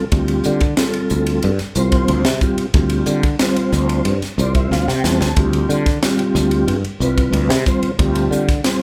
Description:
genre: electric jazz fusion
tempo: 91 BPM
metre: 4/4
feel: straight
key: D minor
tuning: A4 = 439 Hz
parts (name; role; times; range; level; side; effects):
- mellow tonewheel organ; accompaniment; 0.0-8.8 s; G3 to A5; -21 LUFS; equal; slow rotary speaker, chorus vibrato
- sustaining fretless electric bass; bass; 0.1-8.6 s; C2 to D3; -22 LUFS; equal; none
- crisp fusion drum kit; drums; 0.1-8.8 s; hi-hat, kick drum, ride cymbal, snare drum; -22 LUFS; equal; none
room: light reverb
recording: band playing live in one room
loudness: -17 LUFS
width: mono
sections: 0.0-8.8 A section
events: tonewheel organ fill 4.0-5.4; drum fill 4.7-5.4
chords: 0.0 Dm7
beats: | 0.12 0.77 1.43 2.08 | 2.74 3.39 4.05 4.71 | 5.36 6.02 6.67 7.33 | 7.99 8.65

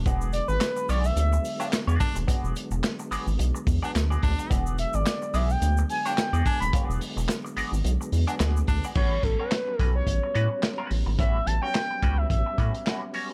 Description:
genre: funk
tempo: 108 BPM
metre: 4/4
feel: swing 56% on 16ths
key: E mixolydian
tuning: A4 = 444 Hz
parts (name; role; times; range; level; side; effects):
- percussive tonewheel organ; sustained chords; 0.0-13.3 s; D3 to C#4; -39 LUFS; equal; chorus vibrato, fast rotary speaker, plate reverb
- rubbery square bass; bass; 0.0-12.7 s; D#1 to A2; -27 LUFS; equal; none
- semi-hollow electric guitar; accompaniment; 0.1-13.3 s; G3 to D5; -38 LUFS; equal; wah, plate reverb
- crunchy breakbeat drum kit; drums; 0.1-13.3 s; crash cymbal, handclaps, hi-hat, kick drum, snare drum; -30 LUFS; equal; none
- tube shaker; percussion; 0.1-9.0 s; none; -48 LUFS; equal; none
- expressive synth lead; melody; 0.3-13.1 s; A4 to B5; -32 LUFS; equal; chorus, plate reverb
- bright baritone saxophone; second line; 1.6-8.9 s; D4; -36 LUFS; equal; plate reverb
room: little or no reverb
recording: none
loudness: -26 LUFS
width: mono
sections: 0.0-9.0 A section; 9.0-13.3 B section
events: none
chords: 0.0 E9; 9.0 A13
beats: | 0.06 0.61 1.17 1.73 | 2.28 2.84 3.40 3.95 | 4.51 5.07 5.62 6.18 | 6.73 7.29 7.85 8.40 | 8.96 9.52 10.08 10.63 | 11.19 11.75 12.31 12.87

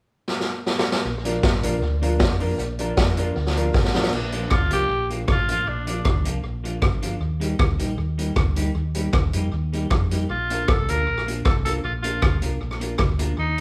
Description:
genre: ska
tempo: 156 BPM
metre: 4/4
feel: straight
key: Bb major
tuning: A4 = 440 Hz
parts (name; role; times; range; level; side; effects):
- street-band drum kit; drums; 0.3-13.6 s; crash cymbal, hi-hat, kick drum, rim click, snare drum; -25 LUFS; equal; none
- hollow-body short-scale fingered electric bass; bass; 1.1-13.6 s; G1 to F2; -28 LUFS; equal; none
- clean electric guitar; accompaniment; 1.2-13.3 s; F3 to Bb4; -33 LUFS; equal; none
- warm upright piano; stabs; 1.2-4.1 s; D4 to Bb4; -30 LUFS; equal; none
- raspy tenor saxophone; melody; 4.1-6.2, 10.3-13.6 s; D4 to Bb4; -28 LUFS; equal; none
room: wet large studio reverb, RT60 0.9 s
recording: band playing live in one room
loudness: -23 LUFS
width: mono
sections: 0.0-1.1 A section; 1.1-4.1 B section; 4.1-13.6 C section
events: drum fill 0.3-1.1, 3.7-4.1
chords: 0.0 N.C.; 1.1 Bb; 7.2 Eb; 10.3 Bb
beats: 0.28 0.67 | 1.05 1.44 1.82 2.20 | 2.59 2.97 3.36 3.74 | 4.13 4.51 4.90 5.28 | 5.67 6.05 6.44 6.83 | 7.21 7.60 7.98 8.37 | 8.75 9.14 9.53 9.91 | 10.30 10.68 11.07 11.45 | 11.84 12.23 12.61 13.00 | 13.38

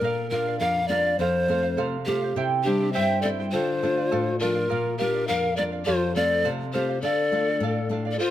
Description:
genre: andean folk, Andean ensemble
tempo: 103 BPM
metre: 2/4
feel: straight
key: D minor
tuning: A4 = 442 Hz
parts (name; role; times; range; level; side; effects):
- polished pan flute; melody; 0.0-8.3 s; G4 to F5; -25 LUFS; equal; none
- charango; accompaniment; 0.0-8.3 s; E4 to G5; -30 LUFS; right 7 dB; none
- nylon-string guitar; accompaniment; 0.0-8.2 s; F2 to F4; -28 LUFS; left 2 dB; none
- breathy mellow pan flute; second line; 2.6-8.3 s; D4 to C5; -29 LUFS; left 4 dB; none
room: light reverb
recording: close, detailed microphones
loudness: -22 LUFS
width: side -12 dB against mid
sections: 0.0-8.2 A section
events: none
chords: 0.0 Bb; 1.2 F; 2.4 C; 3.5 Dm; 4.7 Bb; 5.9 F; 7.0 Dm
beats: | 0.04 0.62 | 1.21 1.79 | 2.37 2.96 | 3.54 4.12 | 4.71 5.29 | 5.87 6.45 | 7.03 7.61 | 8.19

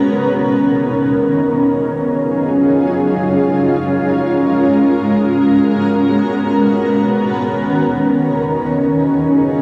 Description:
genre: hip hop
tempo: free time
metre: none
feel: none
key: Eb minor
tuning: A4 = 442 Hz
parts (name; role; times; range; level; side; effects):
- granular cloud pad; solo; 0.0-9.6 s; D#3 to Bb4; -15 LUFS; equal; built-in reverb, analog delay
room: wet booth ambience, RT60 0.3 s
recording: home recording on cassette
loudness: -15 LUFS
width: mono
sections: 0.0-8.5 A section; 8.5-9.6 B section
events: none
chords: 0.0 Bmaj9; 1.4 Ebm11; 3.2 Bbm7; 5.0 Abm11; 6.7 Bmaj9; 8.5 Ebm11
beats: free time

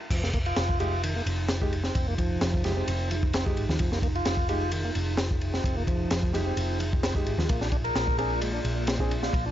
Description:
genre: breakbeat, breaks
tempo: 130 BPM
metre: 4/4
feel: swing 53% on 16ths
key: F dorian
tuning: A4 = 440 Hz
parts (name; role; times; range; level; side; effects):
- dark analog pad; sustained chords; 0.5-9.5 s; Bb3 to D5; -36 LUFS; right 1 dB; chorus, sidechain pumping
- tonewheel organ; riff; 0.1-9.5 s; Eb3 to Bb4; -32 LUFS; equal; stopped rotary speaker, tube saturation, tape echo
- hollow-body short-scale picked electric bass; bass; 0.1-9.5 s; F1 to Eb2; -30 LUFS; equal; none
- crunchy breakbeat drum kit; drums; 0.1-9.5 s; crash cymbal, kick drum, ride cymbal, snare drum; -28 LUFS; equal; none
- dark concert grand piano; stabs; 0.8-9.1 s; Ab3 to Ab4; -36 LUFS; right 1 dB; vintage 12-bit sampler grit, tape echo
room: little or no reverb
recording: nothing above 7.6 kHz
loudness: -25 LUFS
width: side -12 dB against mid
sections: 0.1-9.5 A section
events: drop 0.1-9.5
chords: 0.1 Fm7; 7.5 Bb7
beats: | 0.11 0.57 1.03 1.49 | 1.96 2.42 2.88 3.34 | 3.80 4.26 4.72 5.18 | 5.65 6.11 6.57 7.03 | 7.49 7.96 8.42 8.88 | 9.34

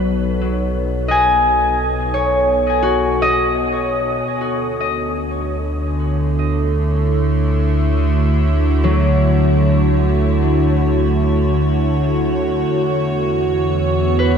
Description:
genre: ambient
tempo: 57 BPM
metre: 4/4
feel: straight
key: unclear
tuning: A4 = 441 Hz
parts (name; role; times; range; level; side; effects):
- evolving wavetable pad; sustained chords; 0.0-14.4 s; B2 to C#5; -18 LUFS; right 1 dB; chorus, built-in reverb
- concert harp; arpeggios; 0.0-14.4 s; F#3 to G#5; -19 LUFS; left 2 dB; ping-pong delay
- warm sub bass; bass; 0.0-14.4 s; B1 to E2; -20 LUFS; equal; none
room: wet huge ambient reverb, RT60 7.6 s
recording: dark, warm production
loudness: -14 LUFS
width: side -7 dB against mid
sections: 0.0-14.4 A section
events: fade-in on ambient pad 0.0-14.4; fade-in on sub bass 0.0-14.4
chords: 0.0 B7; 4.3 Dmaj9; 12.7 E69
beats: | 0.06 1.11 2.17 3.22 | 4.27 5.32 6.38 7.43 | 8.48 9.53 10.59 11.64 | 12.69 13.74

